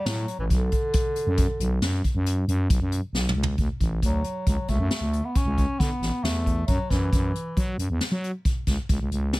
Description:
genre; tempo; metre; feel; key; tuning
progressive instrumental, band music in an uneven meter; 136 BPM; 7/4; straight; unclear; A4 = 441 Hz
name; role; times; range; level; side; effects
clear bass clarinet; melody; 0.0-7.8 s; D3 to C#4; -29 LUFS; equal; plate reverb
growling FM bass; bass; 0.1-9.4 s; A1 to F#3; -25 LUFS; equal; none
vintage brush drum kit; drums; 0.1-9.4 s; hi-hat, kick drum, snare drum, toms; -25 LUFS; equal; none
room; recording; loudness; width
little or no reverb; none; -22 LUFS; side -20 dB against mid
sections
0.0-3.6 A section; 3.6-9.4 B section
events
drum fill 3.1-3.6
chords
0.0 N.C.; 0.5 Bm; 3.6 Dmaj7; 6.7 F#5

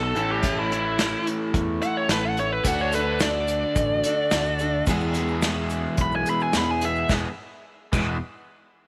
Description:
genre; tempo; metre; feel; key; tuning
folk rock and heartland rock; 108 BPM; 4/4; straight; E major; A4 = 441 Hz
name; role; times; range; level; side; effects
biting lead guitar; melody; 0.0-7.1 s; E4 to B5; -28 LUFS; equal; overdrive
picked steel-string acoustic guitar; accompaniment; 0.0-8.2 s; E2 to C#5; -32 LUFS; equal; none
crunchy overdriven guitar; riff; 0.0-8.2 s; E2 to G#4; -32 LUFS; equal; phaser
picked electric bass; bass; 0.0-8.2 s; E1 to E2; -32 LUFS; equal; none
unplugged drum kit; drums; 0.2-8.1 s; crash cymbal, hi-hat, kick drum, snare drum; -30 LUFS; equal; none
egg shaker; percussion; 2.6-8.2 s; none; -47 LUFS; equal; none
room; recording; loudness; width
light reverb, small room ambience; none; -24 LUFS; mono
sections
0.0-7.1 A section; 7.1-8.9 B section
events
lead electric guitar solo 0.0-7.1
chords
0.2 A; 2.7 D; 4.9 E

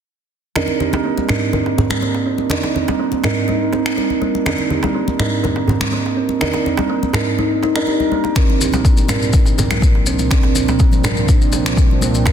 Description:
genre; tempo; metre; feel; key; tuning
afro house; 123 BPM; 4/4; straight; C minor; A4 = 444 Hz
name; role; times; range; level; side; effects
kalimba; arpeggios; 0.6-12.3 s; G3 to Bb4; -21 LUFS; right 2 dB; sidechain pumping, low-pass filter, ping-pong delay
felt-muted upright piano; stabs; 0.6-12.3 s; C4 to Bb4; -21 LUFS; right 4 dB; sidechain pumping, low-pass filter, ping-pong delay
electronic finger snaps; drums; 0.6-12.3 s; none; -25 LUFS; left 1 dB; soft clipping on snare, small room ambience
congas; percussion; 0.6-12.3 s; none; -25 LUFS; left 4 dB; none
darbuka; percussion; 0.6-12.3 s; none; -24 LUFS; right 2 dB; none
warm analog pad; sustained chords; 8.4-12.3 s; C2 to D4; -21 LUFS; equal; chorus, sidechain pumping
electronic kick drum; drums; 8.4-12.3 s; none; -13 LUFS; left 1 dB; small room ambience
maracas; percussion; 8.4-12.3 s; none; -25 LUFS; left 5 dB; none
room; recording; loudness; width
light reverb, small room ambience; dense, heavily limited modern master; -14 LUFS; side -9 dB against mid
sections
0.6-12.3 A section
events
filter sweep on kalimba 0.6-12.3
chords
0.6 Cm7; 8.4 Bbadd9/C

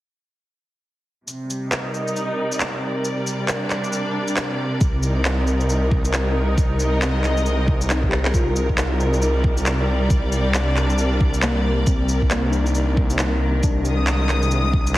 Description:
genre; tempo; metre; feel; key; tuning
future garage; 136 BPM; 4/4; swing 61% on 16ths; C minor; A4 = 440 Hz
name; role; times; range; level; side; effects
rich studio string section; sustained chords; 1.3-15.0 s; C3 to Eb6; -24 LUFS; equal; sidechain pumping, low-pass filter
electronic shaker and handclaps; drums; 1.3-15.0 s; none; -25 LUFS; equal; none
swelling detuned saw bass; bass; 4.8-15.0 s; C2; -20 LUFS; equal; sidechain pumping
electronic kick drum; drums; 4.8-14.8 s; none; -20 LUFS; equal; none
muted felt-like synth keys; accompaniment; 5.3-15.0 s; Bb3 to Ab4; -28 LUFS; left 2 dB; chorus, sidechain pumping, digital delay
room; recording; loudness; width
light reverb, digital ambience; heavily compressed radio sound, multiband compression; -18 LUFS; side -16 dB against mid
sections
1.3-8.3 A section; 8.3-15.0 B section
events
filter sweep on string section 1.3-8.3; drum fill 8.1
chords
1.3 Cm7; 3.0 Gm/C; 4.8 Cm7; 6.6 Abadd9/C; 8.3 Cm7; 10.1 Gm/C; 11.9 Cm7; 13.6 Abadd9/C

